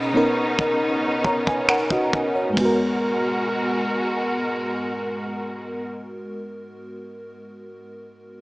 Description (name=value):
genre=contemporary R&B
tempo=68 BPM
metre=4/4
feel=straight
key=G# minor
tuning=A4 = 440 Hz
part: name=FM electric piano with soft pad layer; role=accompaniment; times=0.0-8.4 s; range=G#2 to A#5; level=-23 LUFS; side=equal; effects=chorus, tremolo
part: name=clear studio string section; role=sustained chords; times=0.0-5.9 s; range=B2 to A#4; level=-26 LUFS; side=equal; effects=none
part: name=tight funk drum kit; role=drums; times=0.6-2.8 s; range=finger snaps, kick drum, ride cymbal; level=-26 LUFS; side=equal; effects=none
room=moderate lush hall reverb, RT60 2.1 s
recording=small speaker sound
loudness=-20 LUFS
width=side -21 dB against mid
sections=0.0-2.6 A section; 2.6-6.1 B section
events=none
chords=0.0 Bmaj9; 2.6 G#m9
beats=0.81 1.69 | 2.57 3.45 4.34 5.22